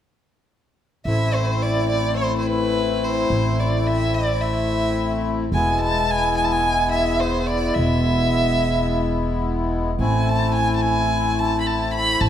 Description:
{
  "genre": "klezmer",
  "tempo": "108 BPM",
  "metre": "4/4",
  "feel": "straight",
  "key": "A harmonic minor",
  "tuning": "A4 = 440 Hz",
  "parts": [
    { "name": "warm violin", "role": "melody", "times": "1.1-12.3 s", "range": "B4 to B5", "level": "-22 LUFS", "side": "right 1 dB", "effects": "none" },
    { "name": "accordion", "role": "accompaniment", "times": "1.1-12.3 s", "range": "G#3 to E4", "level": "-23 LUFS", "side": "left 3 dB", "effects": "light tremolo tuning" },
    { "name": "upright bass", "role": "bass", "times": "1.1-12.3 s", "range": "E1 to A1", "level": "-24 LUFS", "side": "right 1 dB", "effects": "none" }
  ],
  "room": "wet recital hall reverb, RT60 1.4 s",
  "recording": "none",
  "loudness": "-18 LUFS",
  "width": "side -10 dB against mid",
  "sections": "1.1-12.3 A section",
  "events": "none",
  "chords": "1.1 Am; 5.5 E; 10.0 Am"
}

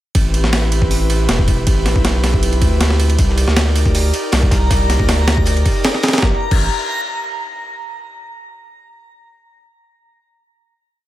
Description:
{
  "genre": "drum and bass, jungle",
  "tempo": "158 BPM",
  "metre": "4/4",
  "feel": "straight",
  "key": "unclear",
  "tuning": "A4 = 439 Hz",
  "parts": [
    { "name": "airy breathy pad", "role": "sustained chords", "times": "0.1-6.4 s", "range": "C4 to D5", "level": "-23 LUFS", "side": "right 1 dB", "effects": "chorus" },
    { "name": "saturated sub bass", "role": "bass", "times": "0.1-6.7 s", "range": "E1 to D2", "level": "-16 LUFS", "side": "equal", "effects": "none" },
    { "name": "breakbeat sampler-style drum kit", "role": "drums", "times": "0.1-6.6 s", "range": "crash cymbal, hi-hat, kick drum, ride cymbal, snare drum", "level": "-16 LUFS", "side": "equal", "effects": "none" },
    { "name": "crunchy breakbeat drum kit", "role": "drums", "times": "3.2-6.2 s", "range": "hi-hat, snare drum", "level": "-30 LUFS", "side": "left 3 dB", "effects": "high-pass filter on hats, high-pass filter on snare, high-pass filter on room" },
    { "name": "backwards swelling texture", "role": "texture", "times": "3.9-6.2 s", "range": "Bb5", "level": "-25 LUFS", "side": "equal", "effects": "built-in reverb" }
  ],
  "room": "little or no reverb",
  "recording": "none",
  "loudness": "-13 LUFS",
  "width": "side -14 dB against mid",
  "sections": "0.1-6.2 drop; 6.2-7.7 final chord",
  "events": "drop 0.1-6.2",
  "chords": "0.1 Am7; 3.2 Cm7; 6.2 Am7"
}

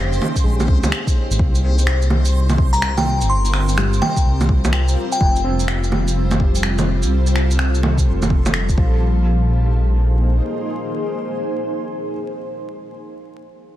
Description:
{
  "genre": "future garage",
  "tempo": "126 BPM",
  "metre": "4/4",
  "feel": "swing 64% on 16ths",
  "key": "unclear",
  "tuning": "A4 = 442 Hz",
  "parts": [
    { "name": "felt-muted upright piano", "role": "accompaniment", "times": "0.0-13.8 s", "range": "Db3 to C4", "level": "-30 LUFS", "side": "left 1 dB", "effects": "sidechain pumping, ping-pong delay" },
    { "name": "granular cloud pad", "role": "sustained chords", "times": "0.0-12.6 s", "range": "G3 to C5", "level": "-26 LUFS", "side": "equal", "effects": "built-in reverb, sidechain pumping" },
    { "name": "dark detuned saw bass", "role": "bass", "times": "0.0-10.4 s", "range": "F1 to Db2", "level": "-17 LUFS", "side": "equal", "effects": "none" },
    { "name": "backwards swelling texture", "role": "texture", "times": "0.0-9.0 s", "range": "C5", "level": "-33 LUFS", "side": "left 1 dB", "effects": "built-in reverb" },
    { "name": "electronic shaker, bongos and finger snaps", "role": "drums", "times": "0.1-8.8 s", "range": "none", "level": "-23 LUFS", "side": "right 1 dB", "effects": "soft clipping on snare" },
    { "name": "electronic kick drum", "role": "drums", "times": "0.4-8.9 s", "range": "none", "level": "-17 LUFS", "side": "equal", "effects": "none" },
    { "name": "glassy synth bell", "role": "melody", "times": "2.7-5.3 s", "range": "G5 to C6", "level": "-23 LUFS", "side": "left 1 dB", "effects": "chorus, ping-pong delay" }
  ],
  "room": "light reverb",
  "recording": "dense, heavily limited modern master, vinyl crackle",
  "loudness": "-15 LUFS",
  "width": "side -13 dB against mid",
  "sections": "0.0-9.0 A section; 9.0-12.8 B section",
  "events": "none",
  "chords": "0.0 Bbm7; 1.4 Cm7; 5.2 Fadd9; 8.8 Bb5"
}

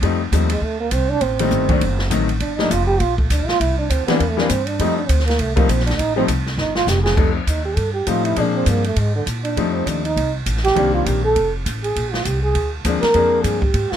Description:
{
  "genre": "jazz, small-group swing and bop",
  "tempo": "201 BPM",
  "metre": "4/4",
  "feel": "swing 60% on 8ths",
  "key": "F mixolydian",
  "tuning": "A4 = 440 Hz",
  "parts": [
    { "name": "clear concert grand piano", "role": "accompaniment", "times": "0.0-13.6 s", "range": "Eb3 to Eb4", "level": "-21 LUFS", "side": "left 7 dB", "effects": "none" },
    { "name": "upright bass", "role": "bass", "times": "0.0-13.9 s", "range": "F1 to Bb2", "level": "-21 LUFS", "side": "equal", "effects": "none" },
    { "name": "open jazz drum kit", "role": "drums", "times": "0.0-14.0 s", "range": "crash cymbal, hi-hat, kick drum, ride cymbal, snare drum", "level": "-24 LUFS", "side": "right 1 dB", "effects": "none" },
    { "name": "trombone with bucket mute", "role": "second line", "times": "0.5-14.0 s", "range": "D3 to Bb4", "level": "-20 LUFS", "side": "right 4 dB", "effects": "none" }
  ],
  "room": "little or no reverb",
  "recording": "none",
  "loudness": "-16 LUFS",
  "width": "side -9 dB against mid",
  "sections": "0.0-7.2 A section; 7.2-14.0 A section",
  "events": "trombone solo 0.0-14.0; drum fill 6.6-7.2",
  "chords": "0.0 F7; 1.2 Am7b5; 1.8 F#dim7; 2.4 Gm7; 3.6 C7; 4.8 F7; 8.4 Bb7; 9.6 F7; 10.8 Cm7; 11.4 F; 12.0 Bb7"
}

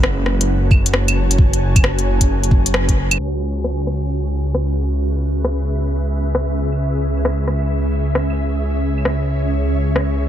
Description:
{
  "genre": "future garage",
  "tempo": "133 BPM",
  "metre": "4/4",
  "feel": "swing 65% on 16ths",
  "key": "C# minor",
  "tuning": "A4 = 441 Hz",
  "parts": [
    { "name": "ethereal airy pad", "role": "sustained chords", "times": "0.0-10.3 s", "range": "C#4 to A5", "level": "-24 LUFS", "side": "right 1 dB", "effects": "ensemble chorus, built-in reverb, tremolo, sidechain pumping" },
    { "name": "swelling detuned saw bass", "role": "bass", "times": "0.0-10.3 s", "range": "F#1 to C#2", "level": "-18 LUFS", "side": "equal", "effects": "tube saturation, sidechain pumping" },
    { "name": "organic electronic drum kit", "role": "drums", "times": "0.0-10.1 s", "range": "claves, hi-hat, rim click", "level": "-22 LUFS", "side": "left 1 dB", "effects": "overdrive, low-pass filter on snare, low-pass filter on hats, low-pass filter on perc" },
    { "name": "electronic kick drum", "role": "drums", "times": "0.7-2.9 s", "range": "none", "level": "-14 LUFS", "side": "equal", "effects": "overdrive" }
  ],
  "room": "little or no reverb",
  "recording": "low-pass filter",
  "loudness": "-16 LUFS",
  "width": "side -11 dB against mid",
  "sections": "0.0-3.2 A section; 3.2-10.3 B section",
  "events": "band accent 2.7",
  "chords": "0.0 F#madd9; 3.2 C#m7"
}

